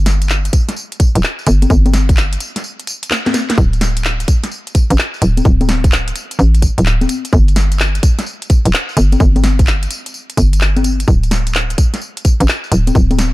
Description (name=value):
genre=UK garage, two-step garage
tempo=128 BPM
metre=4/4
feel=swing 66% on 16ths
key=unclear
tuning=A4 = 441 Hz
part: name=hollow knocking FM bass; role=bass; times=0.0-13.3 s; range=D1 to A1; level=-13 LUFS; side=equal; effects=none
part: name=garage drum kit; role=drums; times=0.1-13.3 s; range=congas, handclaps, hi-hat, snare drum, tambourine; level=-18 LUFS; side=left 2 dB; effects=none
part: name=electronic kick drum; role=drums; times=0.5-13.1 s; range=none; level=-11 LUFS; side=equal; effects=none
room=little or no reverb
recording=none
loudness=-11 LUFS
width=side -18 dB against mid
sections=0.0-13.3 A section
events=break 2.6-3.6; drum fill 3.1-3.6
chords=none